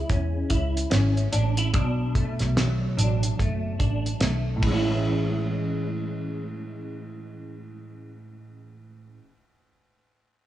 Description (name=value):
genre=indie pop, bedroom pop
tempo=73 BPM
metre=4/4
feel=swing 60% on 16ths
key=A major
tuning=A4 = 440 Hz
part: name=semi-hollow electric guitar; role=accompaniment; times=0.0-9.4 s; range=A2 to E4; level=-28 LUFS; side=equal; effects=ensemble chorus, warbly pitch drift
part: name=vintage muted picked electric bass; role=bass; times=0.1-9.2 s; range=F#1 to E2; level=-26 LUFS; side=right 1 dB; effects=none
part: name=cloth-damped thuddy drum kit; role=drums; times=0.1-4.9 s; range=hi-hat, kick drum, ride cymbal, snare drum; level=-28 LUFS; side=right 1 dB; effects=vintage 12-bit sampler grit
room=light reverb, studio ambience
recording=small room ambience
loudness=-22 LUFS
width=side -13 dB against mid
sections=0.0-5.0 A section; 5.0-8.3 B section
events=none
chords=0.0 Amaj7; 1.7 Bm7; 4.6 Amaj7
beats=0.10 0.92 | 1.74 2.57 3.39 4.21 | 5.04 5.86 6.69 7.51